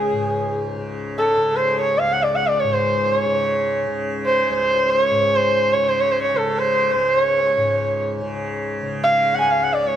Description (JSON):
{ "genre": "indian classical, Hindustani", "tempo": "free time", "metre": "none", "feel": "none", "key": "unclear", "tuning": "A4 = 440 Hz", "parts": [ { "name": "dark sarangi", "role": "melody", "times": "0.0-10.0 s", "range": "G#4 to G#5", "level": "-17 LUFS", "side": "right 1 dB", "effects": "none" }, { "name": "tanpura", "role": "drone", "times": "0.0-10.0 s", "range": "C#2 to C#3", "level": "-26 LUFS", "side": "left 1 dB", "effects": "none" } ], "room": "moderate recital hall reverb, RT60 1.5 s", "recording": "none", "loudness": "-17 LUFS", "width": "side -10 dB against mid", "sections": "0.0-10.0 A section", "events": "none", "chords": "none", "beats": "free time" }